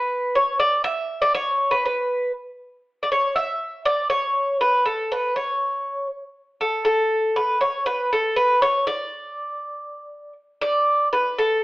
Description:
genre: greek folk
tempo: 239 BPM (eighths)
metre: 7/8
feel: straight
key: unclear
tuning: A4 = 440 Hz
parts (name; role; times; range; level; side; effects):
- Greek bouzouki; solo; 0.0-11.6 s; A4 to E5; -20 LUFS; equal; none
room: wet stone room reverb, RT60 1.0 s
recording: band playing live in one room, telephone sound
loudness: -19 LUFS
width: side -18 dB against mid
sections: 0.0-10.6 A section; 10.6-11.6 B section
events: none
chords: none

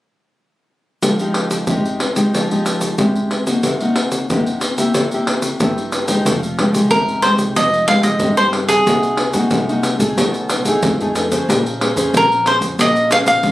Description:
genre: samba and choro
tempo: 92 BPM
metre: 4/4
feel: straight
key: F minor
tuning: A4 = 440 Hz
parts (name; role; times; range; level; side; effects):
- nylon-string guitar; accompaniment; 1.0-13.5 s; G2 to C5; -18 LUFS; left 1 dB; none
- tube shaker, surdo and pandeiro; percussion; 1.0-13.5 s; none; -19 LUFS; equal; none
- upright bass; bass; 6.3-13.5 s; F1 to G2; -25 LUFS; equal; none
- cavaquinho; melody; 6.9-13.5 s; Ab4 to F5; -14 LUFS; equal; none
room: moderate small room reverb, RT60 0.5 s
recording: recorded on a phone in the room, studio ambience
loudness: -14 LUFS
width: side -16 dB against mid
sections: 1.0-6.3 A section; 6.3-13.5 B section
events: none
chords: 1.0 Fm9; 3.6 Cm7b5; 4.9 C7; 6.3 Fm9; 8.9 Cm7b5; 10.2 B13; 11.5 Bbm9

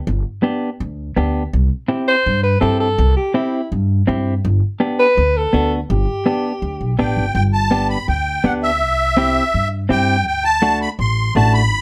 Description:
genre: latin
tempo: 165 BPM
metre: 4/4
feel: straight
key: G major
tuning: A4 = 440 Hz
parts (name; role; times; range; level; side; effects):
- upright bass; bass; 0.1-11.8 s; G1 to G2; -21 LUFS; equal; none
- clean electric guitar; accompaniment; 0.4-11.6 s; A3 to G4; -21 LUFS; equal; none
- warm alto saxophone; melody; 2.1-7.0 s; E4 to C5; -20 LUFS; equal; plate reverb
- musette accordion; second line; 7.0-11.8 s; E5 to C6; -20 LUFS; equal; none
room: light reverb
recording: none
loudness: -17 LUFS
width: mono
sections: 0.0-7.4 A section; 7.4-11.8 B section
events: accordion solo 7.4-11.8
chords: 0.0 G; 1.5 C; 4.4 G; 8.8 C; 10.3 D7

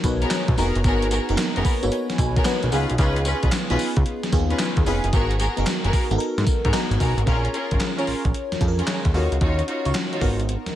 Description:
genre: R&B, new jack swing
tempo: 112 BPM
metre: 4/4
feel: swing 66% on 16ths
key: G# dorian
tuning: A4 = 439 Hz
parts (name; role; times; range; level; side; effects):
- FM electric piano with soft pad layer; accompaniment; 0.0-10.8 s; A#3 to B5; -26 LUFS; left 1 dB; chorus, phaser
- fat analog bass; bass; 0.0-10.7 s; E#1 to G#2; -23 LUFS; equal; none
- gated 80s digital drum machine; drums; 0.0-10.7 s; handclaps, hi-hat, kick drum, snare drum, tambourine; -23 LUFS; equal; gated reverb, gated reverb snare, overdrive, vintage 12-bit sampler grit
- warm studio string section; stabs; 0.2-10.3 s; B3 to C#5; -27 LUFS; left 1 dB; none
room: little or no reverb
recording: none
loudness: -19 LUFS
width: side -12 dB against mid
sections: 0.0-7.3 A section; 7.3-10.8 B section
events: FM electric piano fill 1.4-3.0, 10.5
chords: 0.0 G#m9; 2.7 C#7; 5.1 G#m9; 7.3 A#m7; 9.1 D#m9; 10.2 G#m9

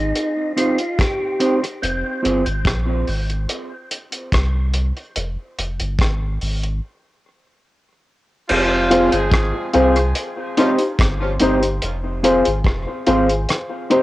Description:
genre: dub reggae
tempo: 72 BPM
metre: 4/4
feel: straight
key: F minor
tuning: A4 = 438 Hz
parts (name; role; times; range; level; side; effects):
- percussive tonewheel organ; melody; 0.0-2.2, 8.5-8.9 s; C4 to G4; -25 LUFS; equal; chorus vibrato, fast rotary speaker, cassette tape, tape echo
- soft dub sub bass; bass; 0.0-13.5 s; F1 to C2; -22 LUFS; equal; tube saturation
- cloth-damped thuddy drum kit; drums; 0.2-14.0 s; crash cymbal, hi-hat, kick drum, rim click; -21 LUFS; equal; cassette tape
- mellow electric guitar; accompaniment; 0.6-2.4, 8.9-14.0 s; C4 to C5; -22 LUFS; right 2 dB; warbly pitch drift, cassette tape, tape echo
- clear horn section; second line; 8.5-10.7 s; C3 to Ab4; -24 LUFS; right 1 dB; cassette tape, tape echo
- dark upright piano; stabs; 8.9-14.0 s; Eb4 to C5; -19 LUFS; left 2 dB; cassette tape, tape echo
room: light reverb, small room ambience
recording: home recording on cassette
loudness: -17 LUFS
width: side -17 dB against mid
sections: 0.0-8.5 A section; 8.5-14.0 B section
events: break 0.0-8.5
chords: 0.1 Cm; 1.8 Fm; 3.5 N.C.; 5.2 Fm; 6.8 N.C.; 8.5 Fm; 10.2 Cm; 11.8 Fm; 13.5 Cm

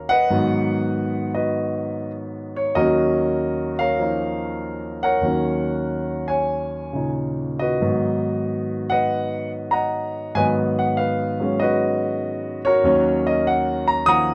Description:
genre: solo jazz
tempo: 96 BPM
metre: 4/4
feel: swing 69% on 8ths, rubato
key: Eb minor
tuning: A4 = 440 Hz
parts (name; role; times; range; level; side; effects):
- warm concert grand piano; solo; 0.0-14.3 s; Eb2 to Eb6; -22 LUFS; equal; none
room: light reverb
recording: close, detailed microphones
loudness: -22 LUFS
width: mono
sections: 0.0-14.3 A section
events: none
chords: 0.3 Abm7; 2.8 Ebm7; 7.8 Abm7; 12.8 Ebm7

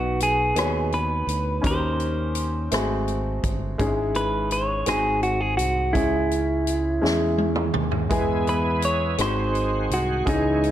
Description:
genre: slow gospel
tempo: 56 BPM (dotted quarters)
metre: 6/8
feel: straight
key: C# minor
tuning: A4 = 441 Hz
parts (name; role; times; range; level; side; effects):
- clean electric guitar; melody; 0.0-10.7 s; D#4 to C#5; -24 LUFS; right 1 dB; spring reverb
- clear concert grand piano; accompaniment; 0.0-10.7 s; G#2 to C#5; -26 LUFS; left 2 dB; none
- fingered electric bass; bass; 0.0-10.7 s; G1 to E2; -27 LUFS; right 1 dB; none
- swinging big-band drum kit; drums; 0.2-10.7 s; hi-hat, kick drum, rim click, snare drum, toms; -28 LUFS; equal; none
- bright tonewheel organ; sustained chords; 8.1-10.7 s; D#3 to G#4; -30 LUFS; right 4 dB; slow rotary speaker, overdrive, chorus vibrato
room: light reverb, studio reverb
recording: none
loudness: -21 LUFS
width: side -11 dB against mid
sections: 0.0-10.7 A section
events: drum fill 7.0-8.1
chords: 0.0 B; 1.6 D#7; 2.7 G#7b9; 3.8 C#m/G#; 4.9 G#7; 6.0 C#m; 8.1 E; 9.2 G#7

